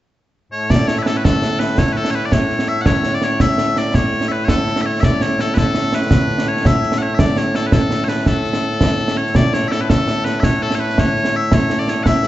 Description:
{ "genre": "scottish traditional, Scottish pipe music", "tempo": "111 BPM (dotted quarters)", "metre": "6/8", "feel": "straight", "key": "A major", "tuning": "A4 = 438 Hz", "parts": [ { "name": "loud bright bagpipes", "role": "melody", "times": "0.5-12.3 s", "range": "A2 to F#5", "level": "-18 LUFS", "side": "left 1 dB", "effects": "tape echo" }, { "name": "concert snare drum and concert bass drum", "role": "drums", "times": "0.7-12.3 s", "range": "none", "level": "-17 LUFS", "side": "right 1 dB", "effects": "none" } ], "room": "wet recital hall reverb, RT60 1.3 s", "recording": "heard from further back in the room, nothing above 7.9 kHz", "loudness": "-14 LUFS", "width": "side -14 dB against mid", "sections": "0.7-9.4 A section; 9.4-12.3 A section", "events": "none", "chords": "none", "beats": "0.16 | 0.70 1.24 | 1.78 2.32 | 2.87 3.40 | 3.95 4.49 | 5.03 5.57 | 6.11 6.65 | 7.19 7.73 | 8.27 8.81 | 9.35 9.89 | 10.43 10.97 | 11.51 12.05" }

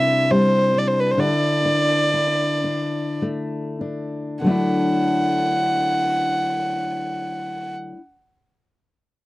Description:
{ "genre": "celtic folk, Celtic slow air", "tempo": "47-74 BPM", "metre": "3/4", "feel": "rubato", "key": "D mixolydian", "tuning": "A4 = 442 Hz", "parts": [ { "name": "warm fiddle", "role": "melody", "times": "0.0-7.8 s", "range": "B4 to F#5", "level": "-21 LUFS", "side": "right 1 dB", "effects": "none" }, { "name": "fingerpicked steel-string acoustic guitar", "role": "accompaniment", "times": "0.0-8.0 s", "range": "C3 to E4", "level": "-22 LUFS", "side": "left 2 dB", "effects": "none" } ], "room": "light reverb", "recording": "dry, close 1970s-style studio recording", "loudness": "-18 LUFS", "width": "side -19 dB against mid", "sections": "0.0-4.4 A section; 4.4-8.1 B section", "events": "slowing down 0.0-4.4", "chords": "0.0 Cadd9; 1.2 Dsus2; 4.4 Dadd9", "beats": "0.31 | 1.18 2.13 3.22 | 4.45 5.69 6.88" }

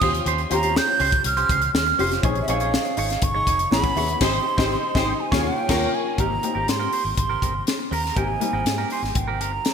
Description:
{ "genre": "polished 1980s jazz-funk pop", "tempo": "122 BPM", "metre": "4/4", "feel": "straight", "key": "Ab major", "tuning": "A4 = 439 Hz", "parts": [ { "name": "breathy hollow jazz flute", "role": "melody", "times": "0.0-9.7 s", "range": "Fb5 to G6", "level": "-24 LUFS", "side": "right 4 dB", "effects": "none" }, { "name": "warm baby grand piano", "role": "accompaniment", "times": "0.0-9.7 s", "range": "G3 to Bb4", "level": "-27 LUFS", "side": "left 4 dB", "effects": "ensemble chorus" }, { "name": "clean electric guitar", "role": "riff", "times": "0.0-9.6 s", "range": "C4 to Db5", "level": "-30 LUFS", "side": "right 4 dB", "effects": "wide subtle chorus" }, { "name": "vintage muted fingered electric bass", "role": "bass", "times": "0.0-9.6 s", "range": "F1 to Ab2", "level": "-28 LUFS", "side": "equal", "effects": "none" }, { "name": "crisp fusion drum kit", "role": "drums", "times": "0.0-9.7 s", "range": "crash cymbal, hi-hat, kick drum, snare drum", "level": "-24 LUFS", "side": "left 1 dB", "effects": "gated reverb" }, { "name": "warm horn section", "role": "second line", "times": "4.2-5.1 s", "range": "C4 to C5", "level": "-32 LUFS", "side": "left 2 dB", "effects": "none" } ], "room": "moderate lush hall reverb, RT60 2.1 s", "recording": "bright 1980s-style digital production", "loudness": "-19 LUFS", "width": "side -7 dB against mid", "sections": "0.0-6.2 A section; 6.2-9.7 B section", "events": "band accent 4.2-6.2", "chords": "0.0 Eb13; 2.2 Bbm11; 3.7 Amaj7; 4.2 Abmaj7; 5.2 Eb9sus4; 6.2 Abmaj9", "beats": "| 0.26 0.75 1.25 1.74 | 2.23 2.73 3.22 3.71 | 4.21 4.70 5.20 5.69 | 6.18 6.68 7.17 7.67 | 8.16 8.66 9.15 9.65" }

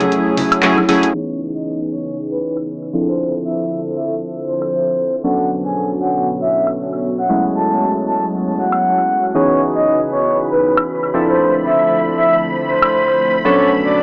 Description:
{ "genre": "deep house", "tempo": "117 BPM", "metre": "4/4", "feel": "swing 56% on 16ths", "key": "C# phrygian", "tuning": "A4 = 440 Hz", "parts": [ { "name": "airy breathy pad", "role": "sustained chords", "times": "0.0-14.0 s", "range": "B2 to C#5", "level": "-27 LUFS", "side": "equal", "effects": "chorus" }, { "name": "warm analog keys", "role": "stabs", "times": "0.0-14.0 s", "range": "E3 to A4", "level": "-21 LUFS", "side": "equal", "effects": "chorus, low-pass filter, tape echo" }, { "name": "punchy analog drum machine", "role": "drums", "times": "0.0-12.9 s", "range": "handclaps, hi-hat, woodblock", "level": "-22 LUFS", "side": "equal", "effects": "vintage 12-bit sampler grit, analog delay" }, { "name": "congas", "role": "percussion", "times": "0.0-0.9 s", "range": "none", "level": "-28 LUFS", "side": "equal", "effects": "analog delay" }, { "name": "soft string machine", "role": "texture", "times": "0.0-1.2, 9.3-14.0 s", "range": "B5", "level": "-28 LUFS", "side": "equal", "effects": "ensemble chorus" }, { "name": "breathy flute-like synth lead", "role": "melody", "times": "1.1-14.0 s", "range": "B4 to A5", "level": "-19 LUFS", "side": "equal", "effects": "chorus, dub echo" } ], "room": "moderate plate reverb, RT60 2.4 s", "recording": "echo-heavy mix, cassette tape, low-pass filter, small speaker sound", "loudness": "-17 LUFS", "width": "mono", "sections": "0.0-1.1 A section; 1.1-14.0 B section", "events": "filter sweep on synth keys 1.1-14.0; filter sweep on analog synth pad 1.1-14.0; filter sweep 1.1-14.0", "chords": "0.0 F#m9; 1.1 C#m9; 2.9 Dm9; 5.2 Bm9; 7.3 F#m9; 9.3 C#m9; 11.1 Dm9; 13.5 Bm9", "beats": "0.12 0.63 | 1.14 1.66 2.17 2.68 | 3.19 3.71 4.22 4.73 | 5.25 5.76 6.27 6.79 | 7.30 7.81 8.32 8.84 | 9.35 9.86 10.37 10.89 | 11.40 11.91 12.43 12.94 | 13.45 13.96" }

